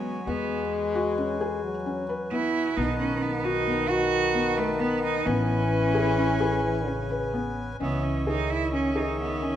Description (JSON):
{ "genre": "contemporary instrumental, chamber music in an uneven meter", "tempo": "263 BPM (eighths)", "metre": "11/8", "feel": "straight", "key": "C# minor", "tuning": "A4 = 439 Hz", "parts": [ { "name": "rich cello", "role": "melody", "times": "0.0-9.6 s", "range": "G#3 to F#4", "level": "-28 LUFS", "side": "right 5 dB", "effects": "none" }, { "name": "mellow French horn", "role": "second line", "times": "0.0-9.6 s", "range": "C#3 to G#3", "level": "-29 LUFS", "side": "left 4 dB", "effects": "none" }, { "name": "hand-pumped harmonium", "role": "sustained chords", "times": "0.0-9.6 s", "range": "C#4 to A5", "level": "-33 LUFS", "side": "equal", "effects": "none" }, { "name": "felt-muted upright piano", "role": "arpeggios", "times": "0.0-9.6 s", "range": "B3 to B4", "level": "-30 LUFS", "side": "left 2 dB", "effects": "none" }, { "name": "upright bass", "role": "bass", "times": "0.0-9.6 s", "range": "A1 to E2", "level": "-32 LUFS", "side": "right 1 dB", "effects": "none" } ], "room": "wet recital hall reverb, RT60 1.6 s", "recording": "none", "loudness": "-24 LUFS", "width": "side -10 dB against mid", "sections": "0.0-7.8 A section; 7.8-9.6 B section", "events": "none", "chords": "0.0 E69; 2.8 B7; 5.3 Amaj9; 7.8 C#madd9" }